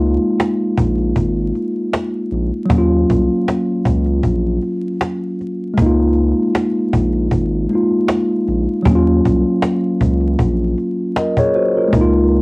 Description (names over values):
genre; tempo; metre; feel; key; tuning
lo-fi hip hop; 78 BPM; 4/4; swing 55% on 16ths; Eb minor; A4 = 440 Hz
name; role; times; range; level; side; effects
mellow tine electric piano; accompaniment; 0.0-12.4 s; Gb3 to Eb5; -16 LUFS; equal; medium stereo tremolo, cassette tape, low-pass filter
saturated sub bass; bass; 0.0-12.4 s; Ab1 to Eb2; -18 LUFS; equal; none
cajon; drums; 0.4-12.4 s; none; -18 LUFS; equal; vintage 12-bit sampler grit, cassette tape
room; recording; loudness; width
light reverb; home recording on cassette, vinyl crackle; -14 LUFS; side -28 dB against mid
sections
0.0-12.4 A section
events
none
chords
0.0 Db6 (rootless); 2.7 Ebm9 (rootless); 5.8 Db6; 8.9 Ebm9